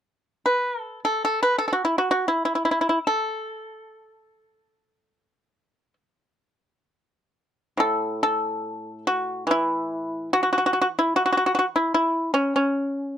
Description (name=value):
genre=chinese traditional, Chinese solo plucked strings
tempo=free time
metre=none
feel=none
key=A gong mode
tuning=A4 = 439 Hz
part: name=pipa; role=solo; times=0.5-13.2 s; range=A2 to B4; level=-21 LUFS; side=equal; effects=none
room=little or no reverb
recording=dry, close 1970s-style studio recording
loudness=-21 LUFS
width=side -9 dB against mid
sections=0.0-7.8 A section; 7.8-13.2 B section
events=none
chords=none